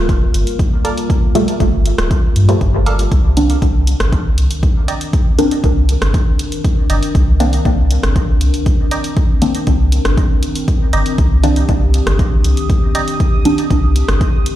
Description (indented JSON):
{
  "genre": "dub techno",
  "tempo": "119 BPM",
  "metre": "4/4",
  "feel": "straight",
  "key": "C minor",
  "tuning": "A4 = 441 Hz",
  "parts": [
    { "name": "warbly tape-like pad", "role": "sustained chords", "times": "0.0-14.6 s", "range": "Eb3 to Bb4", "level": "-23 LUFS", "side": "left 2 dB", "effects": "chorus, built-in reverb, sidechain pumping" },
    { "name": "soft dub sub bass", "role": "bass", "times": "0.0-14.2 s", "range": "D1 to G2", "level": "-14 LUFS", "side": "equal", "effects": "sidechain pumping" },
    { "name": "electronic kick drum", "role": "drums", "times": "0.1-14.3 s", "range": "none", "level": "-15 LUFS", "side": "equal", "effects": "overdrive" },
    { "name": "punchy analog drum machine", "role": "drums", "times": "0.1-14.6 s", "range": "hi-hat, rim click", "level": "-24 LUFS", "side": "equal", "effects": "overdrive" },
    { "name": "wavetable chord stab", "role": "riff", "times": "0.8-13.0 s", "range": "A4 to Bb5", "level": "-26 LUFS", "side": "right 3 dB", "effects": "sidechain pumping, dub echo" },
    { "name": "filtered dub chord stab", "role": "stabs", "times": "1.4-13.6 s", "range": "Bb2 to D4", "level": "-18 LUFS", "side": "equal", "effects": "phaser, cassette tape, sidechain pumping, dub echo" },
    { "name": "bubbling stepped-filter texture", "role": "texture", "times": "11.2-14.6 s", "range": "Eb6", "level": "-28 LUFS", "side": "right 8 dB", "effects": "chorus, built-in reverb, sidechain pumping" }
  ],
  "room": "little or no reverb",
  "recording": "played on a big sound system in a bare room, large studio reverb",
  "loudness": "-12 LUFS",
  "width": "side -13 dB against mid",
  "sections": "0.0-3.1 A section; 3.1-14.6 A section",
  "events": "none",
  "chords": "0.0 Gm9; 3.1 Cm9"
}